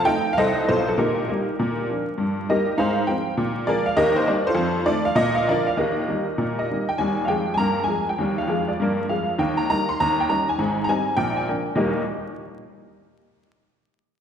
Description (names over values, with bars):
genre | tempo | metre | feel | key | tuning
jazz, stride piano | 200 BPM | 4/4 | swing 65% on 8ths | Eb major | A4 = 439 Hz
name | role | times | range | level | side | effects
honky-tonk upright piano | solo | 0.0-12.0 s | Ab1 to C6 | -20 LUFS | equal | none
room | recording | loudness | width
wet concert hall reverb, RT60 1.9 s | recorded in a church or concert hall, vinyl crackle | -20 LUFS | side -8 dB against mid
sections
0.0-7.0 A section; 7.0-11.8 B section; 11.8-13.0 C section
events
none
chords
0.0 F7; 1.0 Eb/Bb; 1.6 Bb; 2.2 Eb/G; 2.8 Fm/Ab; 3.4 Bb5; 4.0 Eb; 4.6 F7; 5.2 Bb; 5.8 Eb; 7.0 Ab5/Eb; 9.4 Eb; 10.0 Eb7; 10.6 Abmaj7; 11.2 Bb; 11.8 Eb